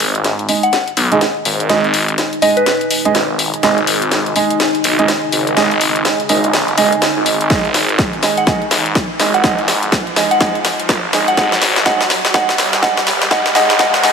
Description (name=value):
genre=bass house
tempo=124 BPM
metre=4/4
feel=swing 61% on 16ths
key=unclear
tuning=A4 = 440 Hz
part: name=phased detuned saw bass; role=bass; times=0.0-14.1 s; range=F#1 to B1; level=-18 LUFS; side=left 1 dB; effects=phaser, tube saturation, sidechain pumping, high-pass filter
part: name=house drum kit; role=drums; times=0.0-14.1 s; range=hi-hat, snare drum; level=-17 LUFS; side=left 1 dB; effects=high-pass filter on hats, high-pass filter on snare, high-pass filter on room
part: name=riser and noise sweep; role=sound effects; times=0.1-14.1 s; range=none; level=-25 LUFS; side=right 1 dB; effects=none
part: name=deep dark ambient pad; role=texture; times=1.9-14.1 s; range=D#4 to G#5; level=-22 LUFS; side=equal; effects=chorus, built-in reverb, sidechain pumping
part: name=clear concert grand piano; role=stabs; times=0.5-14.1 s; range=G#3 to D#5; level=-18 LUFS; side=right 4 dB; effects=sidechain pumping, low-pass filter, tape echo
part: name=soft synth bell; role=melody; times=0.6-2.9, 8.4-14.1 s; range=B4 to F#5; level=-18 LUFS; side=left 1 dB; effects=chorus, phaser, vintage 12-bit sampler grit, tape echo
part: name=electronic kick drum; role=drums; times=7.5-13.9 s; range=none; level=-18 LUFS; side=equal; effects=overdrive
room=moderate lush hall reverb, RT60 1.8 s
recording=high-pass filter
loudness=-12 LUFS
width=side -6 dB against mid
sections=0.0-14.1 A section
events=build-up 0.0-14.1; drum fill 0.0-14.1; filter sweep on grand piano 0.0-14.1; riser 0.1-14.1; noise sweep 13.3-14.1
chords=0.0 G#5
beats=0.24 0.73 1.21 | 1.70 2.18 2.66 3.15 | 3.63 4.12 4.60 5.08 | 5.57 6.05 6.54 7.02 | 7.50 7.99 8.47 8.96 | 9.44 9.92 10.41 10.89 | 11.37 11.86 12.34 12.83 | 13.31 13.79